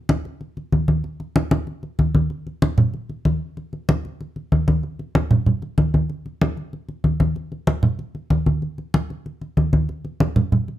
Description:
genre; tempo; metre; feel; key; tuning
latin; 190 BPM; 4/4; straight; none; none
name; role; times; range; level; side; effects
congas; percussion; 0.1-10.8 s; none; -19 LUFS; equal; none
room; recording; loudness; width
moderate studio reverb, RT60 0.7 s; close, detailed microphones; -19 LUFS; side -13 dB against mid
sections
0.0-2.3 A section; 2.3-10.8 B section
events
none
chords
none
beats
0.09 0.41 0.72 | 1.04 1.35 1.67 1.99 | 2.30 2.62 2.94 3.25 | 3.57 3.88 4.20 4.52 | 4.83 5.15 5.46 5.78 | 6.10 6.41 6.73 7.04 | 7.36 7.68 7.99 8.31 | 8.62 8.94 9.26 9.57 | 9.89 10.21 10.52

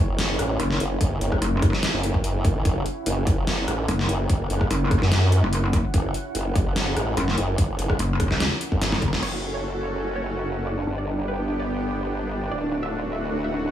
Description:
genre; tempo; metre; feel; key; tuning
heavy wobble dubstep; 146 BPM; 4/4; half-time; F# phrygian; A4 = 441 Hz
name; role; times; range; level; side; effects
supersaw pad; sustained chords; 0.0-13.7 s; A3 to F#5; -31 LUFS; right 1 dB; sidechain pumping, low-pass filter
formant-sweep wobble bass; bass; 0.0-13.7 s; D1 to F#2; -25 LUFS; equal; chorus, overdrive
dubstep drum kit; drums; 0.2-9.3 s; crash cymbal, hi-hat, rim click, snare drum, toms; -27 LUFS; equal; overdrive
pulsing pluck wobble bass; bass; 0.6-9.2 s; E1 to C#2; -22 LUFS; equal; chorus, overdrive
electronic kick drum; drums; 1.0-9.1 s; none; -23 LUFS; equal; overdrive
wide unison pluck; melody; 9.2-13.7 s; D4 to E5; -31 LUFS; right 1 dB; digital delay
room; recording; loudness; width
little or no reverb; small room ambience; -21 LUFS; side -11 dB against mid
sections
0.0-9.2 A section; 9.2-13.7 B section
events
drop 0.0-9.2; drum fill 8.8-9.2; band accent 9.1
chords
0.0 F#5; 9.2 F#m; 10.9 G; 12.5 D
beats
0.18 0.60 | 1.01 1.42 1.83 2.24 | 2.65 3.06 3.47 3.88 | 4.29 4.71 5.12 5.53 | 5.94 6.35 6.76 7.17 | 7.58 7.99 8.40 8.81 | 9.23 9.64 10.05 10.46 | 10.87 11.28 11.69 12.10 | 12.51 12.93 13.34

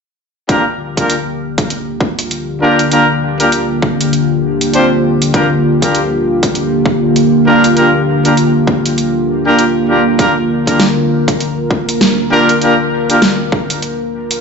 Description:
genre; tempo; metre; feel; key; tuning
glitch hop; 99 BPM; 4/4; swing 60% on 16ths; G minor pentatonic; A4 = 441 Hz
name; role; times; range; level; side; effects
warm analog pad; sustained chords; 0.5-14.4 s; D3 to Bb4; -14 LUFS; equal; chorus, sidechain pumping
brilliant horn section; stabs; 0.5-13.2 s; Bb3 to C5; -14 LUFS; equal; vintage 12-bit sampler grit, sidechain pumping, low-pass filter, dub echo
dubstep drum kit; drums; 0.5-14.4 s; hi-hat, snare drum; -17 LUFS; right 1 dB; none
electronic kick drum; drums; 0.5-13.7 s; none; -16 LUFS; equal; high-pass filter on kick
room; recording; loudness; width
moderate plate reverb, RT60 2.0 s; played on a big sound system in a bare room, large studio reverb, nothing above 7.9 kHz; -10 LUFS; side -5 dB against mid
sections
0.5-14.4 A section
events
none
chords
0.5 Gm7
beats
| 0.49 1.10 1.71 2.31 | 2.92 3.52 4.13 4.74 | 5.34 5.95 6.55 7.16 | 7.77 8.37 8.98 9.58 | 10.19 10.80 11.40 12.01 | 12.61 13.22 13.83

